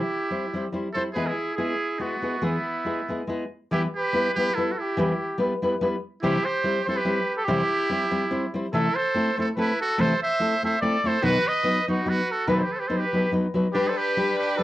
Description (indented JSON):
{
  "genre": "mexican folk, mariachi",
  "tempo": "143 BPM",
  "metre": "3/4",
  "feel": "swing 55% on 8ths",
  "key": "E major, E minor from 3.7 s",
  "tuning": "A4 = 443 Hz",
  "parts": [
    { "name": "clear trumpet", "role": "melody", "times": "0.0-14.6 s", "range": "E4 to E5", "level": "-26 LUFS", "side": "right 1 dB", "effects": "cassette tape" },
    { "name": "trumpet with metal mute", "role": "second line", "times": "0.0-14.6 s", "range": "B3 to C5", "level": "-29 LUFS", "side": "right 2 dB", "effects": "cassette tape" },
    { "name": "nylon-string guitar", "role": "accompaniment", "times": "0.3-14.6 s", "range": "B2 to C5", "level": "-25 LUFS", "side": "left 1 dB", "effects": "cassette tape" },
    { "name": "clear studio violin section", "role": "sustained chords", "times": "13.7-14.6 s", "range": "G3 to B4", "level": "-28 LUFS", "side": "left 1 dB", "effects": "cassette tape" }
  ],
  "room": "wet small room reverb, RT60 0.5 s",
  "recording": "home recording on cassette",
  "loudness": "-22 LUFS",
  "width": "side -15 dB against mid",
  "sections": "0.0-3.7 A section; 3.7-14.6 B section",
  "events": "none",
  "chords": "0.0 C; 1.2 E; 3.7 Em; 6.2 C; 8.7 Am/C; 11.2 B; 13.7 G"
}